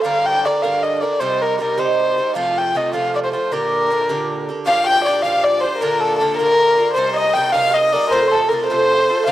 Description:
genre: celtic folk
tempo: 104 BPM (dotted quarters)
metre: 6/8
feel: straight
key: G minor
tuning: A4 = 440 Hz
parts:
  - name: dark erhu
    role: melody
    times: 0.0-9.3 s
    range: A4 to G5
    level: -16 LUFS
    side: left 1 dB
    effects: none
  - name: Irish bouzouki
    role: accompaniment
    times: 0.0-9.3 s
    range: G2 to Bb4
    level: -22 LUFS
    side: right 5 dB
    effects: none
  - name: clear fiddle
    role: second line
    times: 4.7-9.3 s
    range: A4 to G5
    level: -23 LUFS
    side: left 4 dB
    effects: none
room: light reverb, studio reverb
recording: dry, close 1970s-style studio recording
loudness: -15 LUFS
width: side -13 dB against mid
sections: 0.0-4.7 A section; 4.7-9.3 A section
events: none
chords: 0.0 Gm; 1.2 Cm; 2.4 F; 3.5 Gm; 4.7 Gm7; 5.8 Bb; 7.0 Cm7; 8.1 F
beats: | 0.04 0.62 | 1.20 1.77 | 2.35 2.93 | 3.51 4.08 | 4.66 5.24 | 5.82 6.39 | 6.97 7.55 | 8.12 8.70 | 9.28

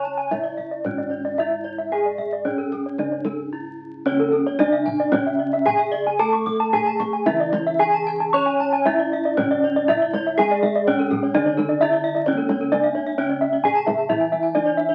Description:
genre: Balinese gamelan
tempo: 112-132 BPM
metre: 4/4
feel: straight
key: C# pelog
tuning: A4 = 440 Hz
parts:
  - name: gamelan-type bronze metallophone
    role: melody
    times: 0.0-14.9 s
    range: C#4 to C#5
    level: -26 LUFS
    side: equal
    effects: none
  - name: gamelan-type bronze metallophone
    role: arpeggios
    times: 0.0-14.9 s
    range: A4 to C#6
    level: -24 LUFS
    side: equal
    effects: none
  - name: gamelan-type bronze metallophone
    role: arpeggios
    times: 0.0-14.9 s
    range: G#4 to D6+35c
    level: -32 LUFS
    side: equal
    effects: none
  - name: gamelan-type bossed gongs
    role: bass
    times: 0.0-14.9 s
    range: C#2 to C#5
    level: -34 LUFS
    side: equal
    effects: none
  - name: kendang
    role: percussion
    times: 0.1-14.9 s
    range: none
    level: -31 LUFS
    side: equal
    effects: none
  - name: gamelan-type bronze metallophone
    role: accompaniment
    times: 4.1-14.9 s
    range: C#3 to C#4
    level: -35 LUFS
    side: equal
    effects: none
room: moderate studio ambience, RT60 0.5 s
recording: very old 78 rpm record, vinyl crackle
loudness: -21 LUFS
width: mono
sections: 0.0-12.3 A section; 12.3-14.9 B section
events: break 3.2-4.1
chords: none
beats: 0.30 0.84 1.38 | 1.91 2.45 2.98 3.52 | 4.05 4.59 5.12 5.66 | 6.20 6.73 7.27 7.80 | 8.34 8.87 9.39 9.89 | 10.39 10.88 11.35 11.82 | 12.28 12.73 13.19 13.64 | 14.10 14.55

